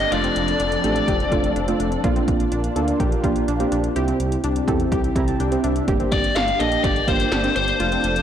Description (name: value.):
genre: synth-pop.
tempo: 125 BPM.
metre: 4/4.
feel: straight.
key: G minor.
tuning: A4 = 439 Hz.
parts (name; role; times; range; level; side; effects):
biting lead guitar; melody; 0.0-1.5, 6.1-8.2 s; C5 to F5; -22 LUFS; left 3 dB; overdrive, ping-pong delay.
sweeping resonant pad; sustained chords; 0.0-8.2 s; C3 to A4; -27 LUFS; left 1 dB; chorus.
smooth gliding synth bass; bass; 0.0-8.2 s; F1 to E2; -26 LUFS; equal; tube saturation.
80s electronic pad drums; drums; 0.0-8.2 s; hi-hat, kick drum, snare drum; -25 LUFS; equal; none.
downlifter; sound effects; 0.0-2.0 s; none; -35 LUFS; right 2 dB; none.
soft electric-piano-like synth keys; accompaniment; 0.1-8.2 s; A3 to Bb5; -25 LUFS; right 3 dB; chorus.
analog pluck; arpeggios; 0.1-8.0 s; C4 to A4; -28 LUFS; left 2 dB; chorus, ping-pong delay.
room: moderate lush hall reverb, RT60 1.7 s, digital ambience.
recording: blown-out, overdriven recording, overdrive.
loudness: -18 LUFS.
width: side -9 dB against mid.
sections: 0.0-8.2 A section.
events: synth keys fill 4.9-5.9.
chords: 0.1 F6; 2.0 Bb; 4.0 C; 5.9 Gm.